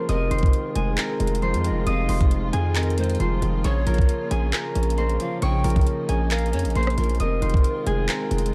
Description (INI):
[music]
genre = hip hop, trap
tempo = 135 BPM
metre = 4/4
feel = half-time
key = F minor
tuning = A4 = 438 Hz
[part]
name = concert harp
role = melody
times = 0.0-8.5 s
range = Ab4 to Eb6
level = -31 LUFS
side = equal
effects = low-pass filter, analog delay
[part]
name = mellow polished pan flute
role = second line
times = 0.0-8.0 s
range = Bb4 to G5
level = -35 LUFS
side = equal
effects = analog delay
[part]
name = warm baby grand piano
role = accompaniment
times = 0.0-8.5 s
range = C3 to Bb4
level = -32 LUFS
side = equal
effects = low-pass filter
[part]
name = dark symphonic string section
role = sustained chords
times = 0.0-8.5 s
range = Db3 to F4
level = -37 LUFS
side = equal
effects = none
[part]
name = distorted 808-style bass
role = bass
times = 0.1-8.5 s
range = F1 to F2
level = -26 LUFS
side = equal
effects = distortion
[part]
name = trap drum kit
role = drums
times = 0.1-8.5 s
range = handclaps, hi-hat, kick drum, rim click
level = -26 LUFS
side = equal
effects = none
[sound]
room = little or no reverb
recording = echo-heavy mix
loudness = -22 LUFS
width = mono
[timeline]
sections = 0.1-8.5 A section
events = none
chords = 0.1 Fm7; 3.6 Bbm; 7.2 Fm7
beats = | 0.09 0.53 0.98 1.42 | 1.86 2.31 2.75 3.20 | 3.64 4.09 4.53 4.98 | 5.42 5.87 6.31 6.75 | 7.20 7.64 8.09 8.53